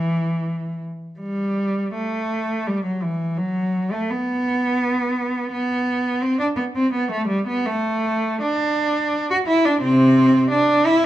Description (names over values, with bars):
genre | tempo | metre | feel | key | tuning
classical, baroque-style suite movement for unaccompanied cello | 84 BPM | 3/4 | uneven beats, rubato | E minor | A4 = 441 Hz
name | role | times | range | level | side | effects
rich cello | solo | 0.0-11.0 s | C3 to F#4 | -18 LUFS | equal | none
room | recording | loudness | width
light reverb | close, detailed microphones | -18 LUFS | side -13 dB against mid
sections
0.0-1.2 A section; 1.2-11.1 B section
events
none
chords
none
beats
0.40 | 1.20 1.95 2.67 | 3.38 4.09 4.81 | 5.52 6.22 6.92 | 7.65 8.41 9.13 | 9.82 10.52